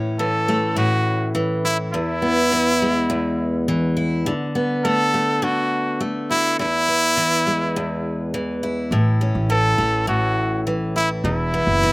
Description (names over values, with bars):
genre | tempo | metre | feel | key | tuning
pop | 103 BPM | 4/4 | straight | A major | A4 = 440 Hz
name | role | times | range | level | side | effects
picked steel-string acoustic guitar | accompaniment | 0.0-11.9 s | E2 to F#4 | -21 LUFS | equal | none
brilliant trumpet | melody | 0.2-11.9 s | E4 to A4 | -20 LUFS | equal | none
upright bass | bass | 8.9-11.9 s | E1 to A1 | -24 LUFS | equal | none
room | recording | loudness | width
little or no reverb | recorded outdoors, with no room sound | -18 LUFS | side -22 dB against mid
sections
0.0-11.9 A section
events
none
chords
0.0 A; 1.9 E; 4.3 D6; 6.6 E; 8.9 A; 11.2 E5